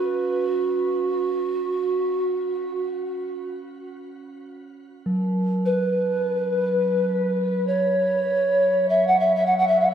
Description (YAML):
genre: world meditative, free-time meditation music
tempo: free time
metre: none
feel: none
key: unclear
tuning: A4 = 440 Hz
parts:
  - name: mellow hollow polished pan flute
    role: melody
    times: 0.0-9.9 s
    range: F#4 to F#5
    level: -21 LUFS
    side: right 1 dB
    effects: shimmer reverb, tape echo
  - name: bronze singing bowl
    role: texture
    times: 0.0-9.9 s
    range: F#3 to C#4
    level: -29 LUFS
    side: right 1 dB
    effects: none
room: wet echo chamber reverb, RT60 1.9 s, studio ambience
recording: echo-heavy mix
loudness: -20 LUFS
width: side -9 dB against mid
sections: 0.0-4.4 A section; 4.4-9.9 A section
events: none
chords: none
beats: free time